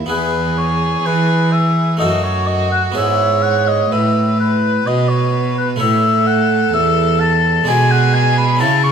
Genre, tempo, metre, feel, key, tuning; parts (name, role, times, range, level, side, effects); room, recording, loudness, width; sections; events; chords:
classical, baroque-style sonata movement with continuo; 63 BPM; 3/4; straight; E major; A4 = 441 Hz
rich violin; second line; 0.0-8.9 s; E4 to C#5; -20 LUFS; right 11 dB
harpsichord; accompaniment; 0.0-8.9 s; E2 to D5; -21 LUFS; right 2 dB
warm cello; bass; 0.0-8.9 s; E2 to E3; -18 LUFS; right 1 dB
mellow oboe; melody; 0.1-8.9 s; B4 to C#6; -17 LUFS; left 6 dB
moderate scoring stage reverb, RT60 1.5 s; -13 LUFS; side -7 dB against mid
0.1-8.9 A section
0.1 E; 2.0 D#dim/F#; 3.0 E/G#; 5.8 A; 7.7 G#dim/B